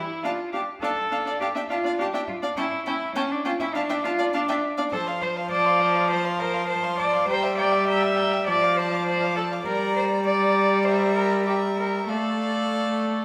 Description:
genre	quick classical-period movement for string quartet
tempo	101 BPM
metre	4/4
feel	rubato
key	D minor from 4.9 s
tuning	A4 = 440 Hz
part	warm violin	melody	0.0-13.2 s	F5 to D6	-35 LUFS	equal	none
part	dark violin	second line	0.0-13.2 s	E4 to G5	-33 LUFS	equal	none
part	rich viola	accompaniment	0.0-13.2 s	F3 to D4	-28 LUFS	equal	none
part	rich cello	bass	0.0-13.2 s	C#4 to E5	-28 LUFS	equal	none
room	wet stone room reverb, RT60 1.3 s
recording	none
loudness	-24 LUFS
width	mono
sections	0.0-13.2 A section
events	none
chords	0.2 Dm; 2.6 A7/C# (rootless); 3.7 Dm; 4.9 F; 7.3 Edim/G; 8.5 Dm/F; 9.7 Gm; 10.9 Edim/G; 12.1 Dm/A

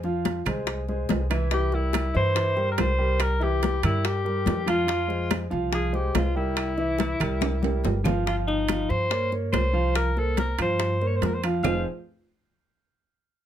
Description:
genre	Afro-Cuban jazz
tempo	142 BPM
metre	4/4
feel	straight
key	F minor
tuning	A4 = 438 Hz
part	warm concert grand piano	accompaniment	0.0-11.8 s	E3 to F5	-29 LUFS	right 2 dB	none
part	upright bass	bass	0.0-11.8 s	F1 to G2	-27 LUFS	equal	none
part	bongos	percussion	0.0-11.7 s	none	-33 LUFS	left 7 dB	none
part	congas	percussion	0.0-11.7 s	none	-31 LUFS	left 2 dB	none
part	timbales	percussion	0.3-11.7 s	none	-32 LUFS	right 8 dB	none
part	claves	percussion	0.5-11.7 s	none	-38 LUFS	right 6 dB	none
part	clear alto saxophone	melody	1.5-11.8 s	Eb4 to F5	-27 LUFS	left 2 dB	none
room	light reverb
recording	none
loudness	-22 LUFS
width	side -10 dB against mid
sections	0.0-8.3 A section; 8.3-11.6 B section; 11.6-13.3 C section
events	drum fill 7.4-8.3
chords	0.0 Fm; 1.5 C7; 4.9 Fm; 6.6 C7; 8.3 Gm7b5; 10.0 C7sus4; 11.6 Fm7

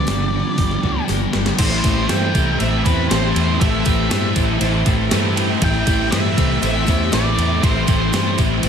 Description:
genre	rock, shoegaze and dream pop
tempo	119 BPM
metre	4/4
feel	straight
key	A minor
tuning	A4 = 440 Hz
part	octave-fuzz lead guitar	melody	0.0-8.3 s	B4 to G5	-25 LUFS	equal	distortion, digital delay
part	phased string machine	sustained chords	0.0-8.7 s	F4 to C6	-31 LUFS	equal	ensemble chorus, phaser
part	twelve-string electric guitar	arpeggios	0.0-8.7 s	E3 to G4	-29 LUFS	right 1 dB	wide subtle chorus, digital delay
part	biting overdriven guitar	riff	0.0-8.7 s	G2 to G4	-23 LUFS	right 12 dB	reverse reverb
part	thick fuzz guitar	riff	0.0-8.7 s	G2 to A3	-22 LUFS	left 10 dB	distortion, analog chorus
part	vintage muted fingered electric bass	bass	0.1-8.7 s	G1 to G2	-21 LUFS	equal	none
part	gated 80s digital drum machine	drums	0.1-8.7 s	crash cymbal, hi-hat, kick drum, ride cymbal, snare drum	-21 LUFS	equal	gated reverb, gated reverb snare
part	tambourine	percussion	0.1-8.7 s	none	-36 LUFS	left 11 dB	none
room	light reverb, digital ambience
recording	none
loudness	-15 LUFS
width	side -7 dB against mid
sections	0.0-1.6 A section; 1.6-8.7 B section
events	drum fill 1.1-1.6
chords	0.0 G7; 1.6 Am7

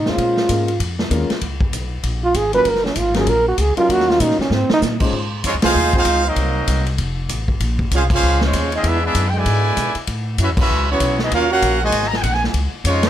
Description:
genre	jazz, big band swing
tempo	194 BPM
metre	4/4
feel	swing 60% on 8ths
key	Db major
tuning	A4 = 442 Hz
part	mellow trombone	melody	0.0-4.8 s	C4 to Cb5	-17 LUFS	right 2 dB	plate reverb
part	upright bass	bass	0.0-13.1 s	F1 to B2	-21 LUFS	equal	none
part	warm grand piano	accompaniment	0.1-5.1 s	Gb3 to C5	-23 LUFS	left 3 dB	none
part	swinging big-band drum kit	drums	0.1-13.1 s	crash cymbal, hi-hat, kick drum, ride cymbal, snare drum	-22 LUFS	equal	none
part	brilliant trumpet section	melody	5.5-13.1 s	Ab3 to Bb5	-19 LUFS	right 1 dB	plate reverb
part	mellow trombone section	second line	5.5-13.1 s	B2 to Gb4	-22 LUFS	right 2 dB	none
room	light reverb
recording	none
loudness	-15 LUFS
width	side -11 dB against mid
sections	0.0-5.1 A section; 5.1-13.1 B section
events	trombone solo 0.0-5.1; drum fill 4.5-4.8; band accent 5.6, 8.1, 10.5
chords	0.2 Bbm7; 1.4 Db5; 2.7 Gbmaj7; 3.9 Ebm9; 4.5 Ab69; 5.1 Dbmaj9; 6.4 Cm7b5; 7.0 F; 7.6 Bbm9; 8.8 E7; 10.1 A69; 11.3 Ebm9; 11.9 Ab9; 12.5 Dbadd9

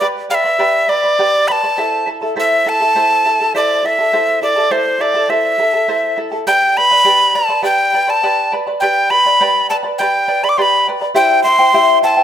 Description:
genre	andean folk, Andean ensemble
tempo	102 BPM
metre	4/4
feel	straight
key	unclear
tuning	A4 = 440 Hz
part	breathy alto recorder	melody	0.0-12.2 s	C5 to D6	-12 LUFS	equal	none
part	charango	accompaniment	0.0-12.2 s	E4 to B5	-18 LUFS	equal	none
room	moderate recital hall reverb, RT60 1.5 s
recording	close, detailed microphones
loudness	-11 LUFS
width	side -10 dB against mid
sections	0.0-6.5 A section; 6.5-12.2 B section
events	none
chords	0.0 G; 1.8 Am; 6.5 G; 11.2 C

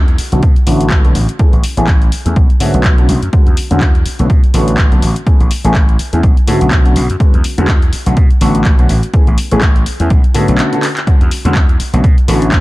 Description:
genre	filtered disco house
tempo	124 BPM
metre	4/4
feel	swing 57% on 16ths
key	B dorian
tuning	A4 = 440 Hz
part	gritty slap bass	bass	0.0-12.6 s	A1 to B2	-15 LUFS	equal	overdrive, sidechain pumping, low-pass filter
part	punchy analog drum machine	drums	0.1-12.6 s	handclaps, hi-hat	-21 LUFS	left 1 dB	overdrive, sidechain pumping on hats
part	warm grand piano	accompaniment	0.3-12.6 s	D3 to G#4	-17 LUFS	left 1 dB	phaser, sidechain pumping, low-pass filter
part	electronic kick drum	drums	0.4-12.6 s	none	-10 LUFS	equal	overdrive
room	digital ambience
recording	dark, warm production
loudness	-9 LUFS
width	side -19 dB against mid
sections	0.0-12.6 A section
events	filter sweep 0.0-12.6; break 10.6-11.1; drum fill 10.8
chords	0.2 Bm9; 1.2 Amaj9; 2.4 Bm9; 3.3 E13; 4.1 Bm9; 5.0 Amaj9; 6.2 Bm9; 7.2 E13; 7.9 Bm9; 8.9 Amaj9; 10.1 Bm9; 11.1 E13; 11.8 Bm9

